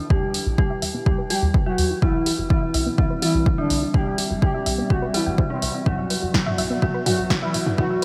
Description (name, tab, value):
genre	melodic techno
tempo	125 BPM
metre	4/4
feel	straight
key	unclear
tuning	A4 = 438 Hz
part	soft round pluck	arpeggios	0.0-8.0 s	B3 to G5	-33 LUFS	equal	chorus, sidechain pumping, delay
part	warbly tape-like pad	texture	0.0-8.0 s	G3 to G5	-35 LUFS	equal	chorus, built-in reverb, sidechain pumping
part	analog synth brass	melody	0.1-8.0 s	C3 to G4	-28 LUFS	equal	chorus, sidechain pumping, diffuse ambient delay
part	dark detuned synth bell	second line	0.1-8.0 s	C4 to G4	-31 LUFS	equal	chorus, tremolo, sidechain pumping, low-pass filter, delay
part	plucky analog bass	bass	0.1-8.0 s	F#1 to E2	-30 LUFS	equal	sidechain pumping
part	electronic kick drum	drums	0.1-7.9 s	none	-23 LUFS	equal	none
part	punchy analog drum machine	drums	0.3-8.0 s	hi-hat, snare drum, toms	-29 LUFS	equal	sidechain pumping on hats, sidechain pumping on toms
room	moderate huge ambient reverb, RT60 4.6 s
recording	dreamy mix soaked in reverb, high-pass filter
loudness	-21 LUFS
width	mono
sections	0.0-8.0 A section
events	build-up 0.0-8.0; filter sweep on synth arpeggio sound 0.0-8.0; filter sweep on analog polysynth 0.0-8.0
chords	0.0 Em; 2.0 C; 5.9 Bm